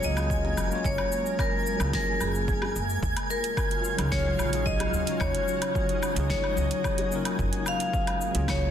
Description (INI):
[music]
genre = sunset chillout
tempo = 110 BPM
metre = 4/4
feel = straight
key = F# major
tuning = A4 = 440 Hz
[part]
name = vibraphone with hard mallets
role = melody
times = 0.0-8.7 s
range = G#4 to E#5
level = -30 LUFS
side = left 2 dB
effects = ping-pong delay
[part]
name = tine electric piano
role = accompaniment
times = 0.0-8.7 s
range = F#3 to C#5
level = -34 LUFS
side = moving between left 4 dB and right 6 dB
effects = auto-pan
[part]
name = shimmering ambient pad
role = sustained chords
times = 0.0-8.7 s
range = C#3 to E#4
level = -34 LUFS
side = equal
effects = chorus, built-in reverb
[part]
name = upright bass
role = bass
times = 0.0-8.7 s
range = F#1 to F#2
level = -29 LUFS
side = equal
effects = none
[part]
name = smooth R&B drum kit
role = drums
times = 0.0-8.6 s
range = cabasa, hi-hat, snare drum, woodblock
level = -34 LUFS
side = left 1 dB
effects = none
[part]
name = twinkling granular texture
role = texture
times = 0.0-8.7 s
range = G#5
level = -36 LUFS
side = right 3 dB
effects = built-in reverb
[part]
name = electronic kick drum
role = drums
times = 0.3-8.6 s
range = none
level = -32 LUFS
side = equal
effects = none
[part]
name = bongos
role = percussion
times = 0.4-7.1 s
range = none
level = -41 LUFS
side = right 2 dB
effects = none
[sound]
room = light reverb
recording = dense, heavily limited modern master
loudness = -24 LUFS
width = side -9 dB against mid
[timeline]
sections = 0.0-8.7 A section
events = none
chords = 0.0 F#maj9; 3.0 D#m11; 7.4 F#maj9